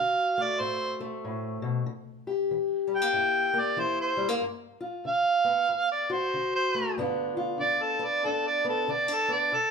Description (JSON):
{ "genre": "acoustic country blues, solo or duo", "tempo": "94 BPM", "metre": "4/4", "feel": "swing 62% on 8ths", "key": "G mixolydian", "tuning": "A4 = 440 Hz", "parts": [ { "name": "mellow harmonica", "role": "melody", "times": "0.0-9.7 s", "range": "A4 to G5", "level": "-25 LUFS", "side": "right 2 dB", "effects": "none" }, { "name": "fingerpicked steel-string acoustic guitar", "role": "accompaniment", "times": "0.0-9.7 s", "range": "D2 to G4", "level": "-30 LUFS", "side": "left 3 dB", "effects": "none" } ], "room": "moderate large studio reverb, RT60 1.1 s", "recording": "band playing live in one room", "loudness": "-25 LUFS", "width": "side -5 dB against mid", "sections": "0.0-7.0 A section; 7.0-9.7 B section", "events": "harmonica solo 7.0-9.7", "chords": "0.0 D7; 1.9 C7; 4.4 G7; 5.7 D; 7.0 G7" }